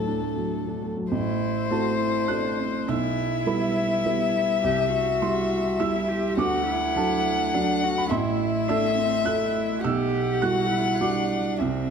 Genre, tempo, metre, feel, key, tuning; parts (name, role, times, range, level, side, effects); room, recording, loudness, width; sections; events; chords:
neoclassical piano and strings; 103 BPM; 3/4; rubato; E minor; A4 = 440 Hz
warm violin; melody; 0.0-11.9 s; A4 to F#5; -26 LUFS; left 6 dB
warm cello; second line; 0.0-11.9 s; F#3 to G4; -29 LUFS; right 4 dB
felt-muted upright piano; accompaniment; 0.0-11.9 s; A1 to F#6; -25 LUFS; right 2 dB
moderate scoring stage reverb, RT60 1.7 s; dark, warm production; -22 LUFS; side -6 dB against mid
0.0-1.1 A section; 1.1-11.9 B section
0.0 D; 1.1 Am; 2.9 Em/B; 4.6 C; 6.4 D; 8.1 Am; 9.8 Emadd9/B